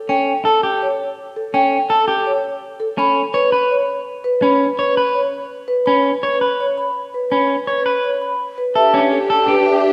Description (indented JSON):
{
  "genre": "classical, minimalist pattern music",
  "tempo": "166 BPM",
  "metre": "4/4",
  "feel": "straight",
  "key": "A mixolydian",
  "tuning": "A4 = 441 Hz",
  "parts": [
    { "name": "vibraphone with soft mallets", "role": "melody", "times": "0.0-9.9 s", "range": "A4 to B5", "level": "-21 LUFS", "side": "equal", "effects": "none" },
    { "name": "electric guitar at the edge of break-up", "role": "arpeggios", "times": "0.1-9.7 s", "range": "C#4 to C#5", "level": "-20 LUFS", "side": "equal", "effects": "none" },
    { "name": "mellow wooden-headed alto flute", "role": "second line", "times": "8.8-9.9 s", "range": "G4", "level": "-21 LUFS", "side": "equal", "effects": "none" },
    { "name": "rich studio string section", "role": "sustained chords", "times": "8.8-9.9 s", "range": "D4 to G4", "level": "-24 LUFS", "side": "equal", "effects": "none" }
  ],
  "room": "wet scoring stage reverb, RT60 2.0 s",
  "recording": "none",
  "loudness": "-17 LUFS",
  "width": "mono",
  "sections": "0.0-8.8 A section; 8.8-9.9 B section",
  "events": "none",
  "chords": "0.0 A7; 3.0 Bsus2/C#; 8.8 A9sus4"
}